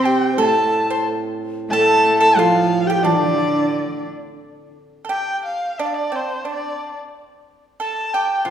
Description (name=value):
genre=chinese traditional, Chinese chamber ensemble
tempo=90 BPM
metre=2/4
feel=rubato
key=D yu mode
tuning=A4 = 440 Hz
part: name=warm erhu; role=melody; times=0.0-8.5 s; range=C5 to A5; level=-22 LUFS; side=left 1 dB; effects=none
part: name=clear cello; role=second line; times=0.0-4.1 s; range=D3 to C4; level=-23 LUFS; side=right 2 dB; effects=none
part: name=mellow hollow xiao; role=second line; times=0.0-4.0 s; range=D4 to C5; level=-21 LUFS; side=left 2 dB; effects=none
part: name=hammered dulcimer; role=accompaniment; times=0.0-3.7, 8.5 s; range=A2 to F3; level=-26 LUFS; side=right 3 dB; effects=none
part: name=pipa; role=second line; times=0.1-8.5 s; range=C4 to C5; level=-21 LUFS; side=right 2 dB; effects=none
room=wet concert hall reverb, RT60 2.0 s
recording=recorded in a church or concert hall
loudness=-16 LUFS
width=side -9 dB against mid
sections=0.0-4.4 A section; 4.4-8.5 B section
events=none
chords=none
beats=| 0.39 1.06 | 1.72 2.38 | 3.04 3.71 | 4.41 5.10 | 5.79 6.47 | 7.14 7.81 | 8.48